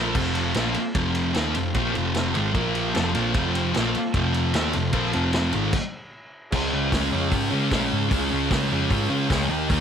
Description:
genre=garage rock duo or trio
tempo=151 BPM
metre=4/4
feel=straight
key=unclear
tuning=A4 = 439 Hz
part: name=combo organ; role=sustained chords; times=0.0-9.8 s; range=Bb3 to A5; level=-33 LUFS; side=right 1 dB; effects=lush chorus
part: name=thick fuzz guitar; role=riff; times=0.0-9.8 s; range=F2 to Eb4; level=-23 LUFS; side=equal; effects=distortion
part: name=hollow-body short-scale picked electric bass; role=bass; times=0.0-9.8 s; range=F1 to Db3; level=-29 LUFS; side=equal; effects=overdrive
part: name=vintage drum kit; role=drums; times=0.1-9.8 s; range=crash cymbal, hi-hat, kick drum, ride cymbal, snare drum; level=-28 LUFS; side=equal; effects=none
room=light reverb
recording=none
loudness=-21 LUFS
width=side -8 dB against mid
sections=0.0-6.5 A section; 6.5-9.8 B section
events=drum fill 0.0; transistor combo organ fill 2.7-3.3, 8.9-9.7; stop 5.7-6.5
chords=0.0 F; 2.5 Bb5; 2.9 F; 5.7 N.C.; 6.5 Db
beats=| 0.15 0.55 0.95 1.35 | 1.75 2.15 2.55 2.95 | 3.35 3.75 4.14 4.54 | 4.94 5.34 5.74 6.14 | 6.53 6.93 7.33 7.72 | 8.12 8.52 8.91 9.31 | 9.71

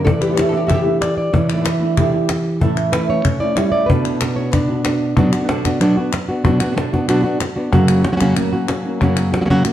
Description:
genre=flamenco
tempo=188 BPM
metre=4/4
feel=straight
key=B minor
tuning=A4 = 442 Hz
part: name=flamenco guitar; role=melody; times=0.0-9.7 s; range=F#2 to E5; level=-17 LUFS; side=equal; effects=none
part: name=oud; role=second line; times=0.0-0.8 s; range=F#4 to A4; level=-20 LUFS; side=left 3 dB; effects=none
part: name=flamenco guitar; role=stabs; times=0.0-9.7 s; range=E2 to F#4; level=-22 LUFS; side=right 3 dB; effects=none
part: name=cajon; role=percussion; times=0.1-9.7 s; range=none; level=-20 LUFS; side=left 1 dB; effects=none
part: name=palmas hand claps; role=percussion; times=0.2-9.7 s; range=none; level=-28 LUFS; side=left 5 dB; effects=none
room=wet stone room reverb, RT60 1.3 s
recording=dark, warm production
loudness=-14 LUFS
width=side -12 dB against mid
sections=0.0-5.2 A section; 5.2-9.7 B section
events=none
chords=0.1 Em7; 2.6 A; 3.9 Bm; 7.7 F#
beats=| 0.06 0.38 0.70 1.02 | 1.34 1.66 1.98 2.29 | 2.61 2.93 3.25 3.57 | 3.89 4.21 4.53 4.85 | 5.17 5.49 5.81 6.13 | 6.45 6.77 7.09 7.41 | 7.73 8.05 8.37 8.69 | 9.01 9.33 9.65

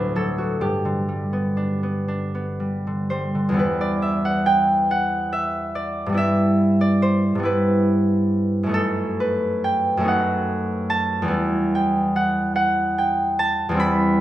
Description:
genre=classical, solo harp piece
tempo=38-49 BPM (dotted quarters)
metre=6/8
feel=rubato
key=G major, E minor from 3.6 s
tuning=A4 = 442 Hz
part: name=concert harp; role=solo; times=0.0-14.2 s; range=D2 to B5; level=-19 LUFS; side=equal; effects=none
room=moderate recital hall reverb, RT60 1.7 s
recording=recorded in a church or concert hall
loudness=-19 LUFS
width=side -14 dB against mid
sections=0.0-3.6 A section; 3.6-14.2 B section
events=none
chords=0.0 D; 0.6 G; 3.6 Em; 6.2 Em/G; 8.7 B7/F#; 11.3 Em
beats=| 0.62 2.08 | 3.60 4.91 | 6.18 7.44 | 8.72 10.06 | 11.30 12.56 | 13.80

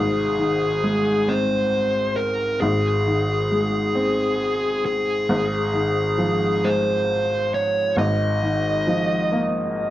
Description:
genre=pop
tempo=45 BPM (dotted quarters)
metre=6/8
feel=straight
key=Ab major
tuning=A4 = 440 Hz
part: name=dark smooth lead guitar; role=melody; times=0.0-9.9 s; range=Ab4 to Eb5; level=-22 LUFS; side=left 1 dB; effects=overdrive
part: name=clear upright piano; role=accompaniment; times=0.0-9.9 s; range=Ab1 to C4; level=-22 LUFS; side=equal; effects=none
room=moderate echo chamber reverb, RT60 1.3 s, studio reverb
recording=none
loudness=-19 LUFS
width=side -14 dB against mid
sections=0.0-9.9 A section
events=none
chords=0.0 Ab; 5.3 Ab6; 8.0 Ebsus2/Ab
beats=1.27 | 2.61 3.95 | 5.29 6.63 | 7.97 9.31

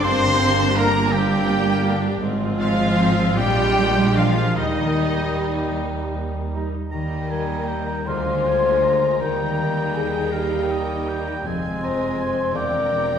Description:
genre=classical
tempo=49-56 BPM (dotted quarters)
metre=6/8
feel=rubato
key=Eb major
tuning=A4 = 441 Hz
part: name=warm studio violin section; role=melody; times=0.0-13.2 s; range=Eb5 to C6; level=-29 LUFS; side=left 2 dB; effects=none
part: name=clear oboe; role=second line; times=0.0-13.2 s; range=Eb4 to Bb5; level=-31 LUFS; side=right 2 dB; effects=none
part: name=dark clarinet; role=second line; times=0.0-13.2 s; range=Bb3 to Eb4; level=-33 LUFS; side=left 2 dB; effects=none
part: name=mellow hollow silver concert flute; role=second line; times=0.0-13.2 s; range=Eb5 to D6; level=-32 LUFS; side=equal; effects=none
part: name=rich studio violin section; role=second line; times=0.0-13.2 s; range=Eb5 to C6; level=-34 LUFS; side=left 2 dB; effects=none
part: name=mellow bassoon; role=accompaniment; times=0.0-13.2 s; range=G3 to Bb3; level=-31 LUFS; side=right 2 dB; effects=none
part: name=rich studio viola section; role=accompaniment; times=0.0-13.2 s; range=G3 to G4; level=-31 LUFS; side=right 2 dB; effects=none
part: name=dark French horn section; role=sustained chords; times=0.0-13.2 s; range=Eb3 to D5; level=-24 LUFS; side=left 3 dB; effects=none
part: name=concert harp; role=arpeggios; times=0.0-13.2 s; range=G2 to Bb5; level=-29 LUFS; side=left 2 dB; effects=none
part: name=clear trumpet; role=stabs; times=0.0-5.8 s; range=Eb4 to C5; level=-28 LUFS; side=right 1 dB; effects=none
part: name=rich studio double bass section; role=bass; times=0.0-13.2 s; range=E1 to Eb2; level=-26 LUFS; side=right 2 dB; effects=none
part: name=warm studio cello section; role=bass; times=0.0-13.2 s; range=E2 to C4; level=-27 LUFS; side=right 2 dB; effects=none
part: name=clear trombone section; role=sustained chords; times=0.7-6.7 s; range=D3 to Eb4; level=-32 LUFS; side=right 2 dB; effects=none
room=wet recital hall reverb, RT60 1.6 s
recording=recorded in a church or concert hall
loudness=-18 LUFS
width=side -8 dB against mid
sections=0.0-6.9 A section; 6.9-13.2 A section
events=none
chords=0.0 Gm; 2.2 Fm/Ab; 3.4 Bb7; 4.6 Eb; 8.1 Bb7/D; 9.2 Eb; 11.4 Fm; 12.5 C7/E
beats=| 0.04 1.12 | 2.22 3.37 | 4.57 5.76 | 6.92 8.07 | 9.19 10.31 | 11.44 12.54

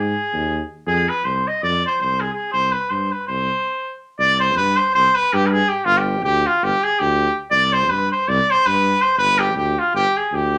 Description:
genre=balkan folk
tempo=324 BPM (eighths)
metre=9/8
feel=straight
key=C harmonic minor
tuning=A4 = 440 Hz
part: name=bright trumpet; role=melody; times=0.0-10.6 s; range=F4 to Eb5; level=-19 LUFS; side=equal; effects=none
part: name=mellow tuba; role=bass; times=0.0-10.6 s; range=G1 to Ab2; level=-26 LUFS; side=equal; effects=none
room=moderate club reverb, RT60 0.6 s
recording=none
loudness=-19 LUFS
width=mono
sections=0.0-4.2 A section; 4.2-10.6 B section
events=stop 3.6-4.2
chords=0.0 Ab5; 0.8 F5; 2.5 C5; 5.8 G5; 7.5 C5; 9.2 G5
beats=0.10 0.29 0.47 0.66 | 0.84 1.03 1.22 1.40 1.59 1.77 1.96 2.15 2.33 | 2.52 2.70 2.89 3.07 3.26 3.44 3.63 3.81 4.00 | 4.18 4.37 4.55 4.74 4.92 5.11 5.29 5.48 5.66 | 5.85 6.03 6.22 6.40 6.59 6.77 6.96 7.14 7.33 | 7.51 7.69 7.88 8.06 8.25 8.43 8.62 8.80 8.99 | 9.17 9.36 9.54 9.73 9.91 10.10 10.29 10.47

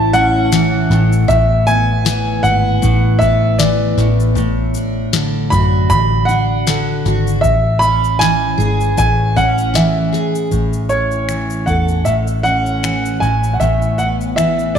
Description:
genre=acoustic pop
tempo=78 BPM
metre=4/4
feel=swing 55% on 16ths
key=A major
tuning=A4 = 440 Hz
part: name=warm upright piano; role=melody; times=0.0-14.8 s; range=C#5 to B5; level=-17 LUFS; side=right 2 dB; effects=none
part: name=picked steel-string acoustic guitar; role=accompaniment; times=0.0-14.8 s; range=A2 to A4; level=-18 LUFS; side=left 1 dB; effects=double-tracked left and right
part: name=vintage muted fingered electric bass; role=bass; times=0.0-14.8 s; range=G#1 to F#2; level=-17 LUFS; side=equal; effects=none
part: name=booming analog drum machine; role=drums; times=0.1-14.8 s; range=finger snaps, kick drum, shaker, snare drum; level=-23 LUFS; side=left 2 dB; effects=none
room=moderate echo chamber reverb, RT60 2.5 s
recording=1960s-style stereo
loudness=-12 LUFS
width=side -8 dB against mid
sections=0.0-10.5 A section; 10.5-14.8 B section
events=none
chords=0.0 A; 0.9 E/A; 4.0 Bm7; 7.4 C#m; 10.5 A; 13.2 E/A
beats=0.52 | 1.29 2.06 2.82 3.59 | 4.36 5.13 5.90 6.67 | 7.43 8.20 8.97 9.74 | 10.52 11.29 12.06 12.83 | 13.61 14.38

